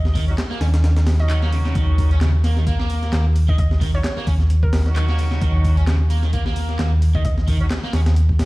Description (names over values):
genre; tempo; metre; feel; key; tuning
breakbeat, breaks; 131 BPM; 4/4; swing 56% on 16ths; Eb minor; A4 = 442 Hz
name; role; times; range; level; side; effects
hollow-body short-scale picked electric bass; bass; 0.0-8.5 s; Bb1 to Eb2; -17 LUFS; equal; none
crunchy overdriven guitar; riff; 0.1-8.0 s; Db3 to Db4; -28 LUFS; equal; none
breakbeat sampler-style drum kit; drums; 0.1-8.5 s; hi-hat, kick drum, snare drum; -22 LUFS; equal; studio reverb
house drum kit; drums; 0.2-8.5 s; handclaps, hi-hat; -36 LUFS; left 1 dB; studio reverb
mellow horn section; stabs; 0.3-7.7 s; Gb3 to Gb4; -32 LUFS; right 2 dB; ping-pong delay
hollow square pluck; melody; 1.2-7.3 s; Bb4 to Eb5; -33 LUFS; right 2 dB; chorus, small speaker sound, vintage 12-bit sampler grit, ping-pong delay
room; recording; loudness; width
digital ambience; played on a big sound system in a bare room, stone room reverb, vinyl crackle; -16 LUFS; side -20 dB against mid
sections
0.0-8.5 A section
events
none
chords
0.0 Ebm7